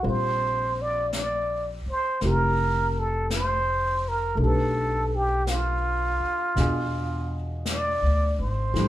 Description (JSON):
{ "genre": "jazz ballad", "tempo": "55 BPM", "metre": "4/4", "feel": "swing 67% on 8ths", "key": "unclear", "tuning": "A4 = 440 Hz", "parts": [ { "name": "trumpet with plunger mute", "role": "melody", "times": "0.0-8.9 s", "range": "F4 to D5", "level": "-26 LUFS", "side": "right 1 dB", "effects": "none" }, { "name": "warm baby grand piano", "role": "accompaniment", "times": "0.0-8.9 s", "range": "B2 to C5", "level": "-31 LUFS", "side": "equal", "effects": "none" }, { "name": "upright bass", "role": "bass", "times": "0.0-8.9 s", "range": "F1 to E2", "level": "-27 LUFS", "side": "equal", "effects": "none" }, { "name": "jazz brush drum kit", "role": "drums", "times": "0.0-8.9 s", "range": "brushed snare drum, hi-hat, snare drum", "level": "-36 LUFS", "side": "left 2 dB", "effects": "none" } ], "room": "light reverb", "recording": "band playing live in one room", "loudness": "-23 LUFS", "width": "side -13 dB against mid", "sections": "0.0-8.9 A section", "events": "none", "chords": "0.0 Bbsus2; 4.4 Bm7b5; 6.6 E7b9" }